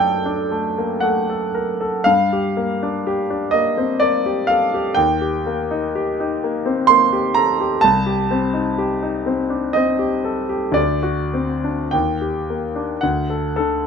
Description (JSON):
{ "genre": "classical, romantic nocturne for solo piano", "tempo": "62 BPM", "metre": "3/4", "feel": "uneven beats, rubato", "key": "G minor", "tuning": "A4 = 440 Hz", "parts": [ { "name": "clear grand piano", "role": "solo", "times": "0.0-13.9 s", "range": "C2 to C6", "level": "-17 LUFS", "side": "equal", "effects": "none" } ], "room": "light reverb", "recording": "minimal, uncompressed stereo recording", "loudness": "-17 LUFS", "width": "side -6 dB against mid", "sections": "0.0-13.9 A section", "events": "none", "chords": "0.0 D/F#; 2.1 Gm; 5.0 Eb; 7.8 Am7b5/C; 10.8 D7; 11.9 Ebmaj7; 13.0 D" }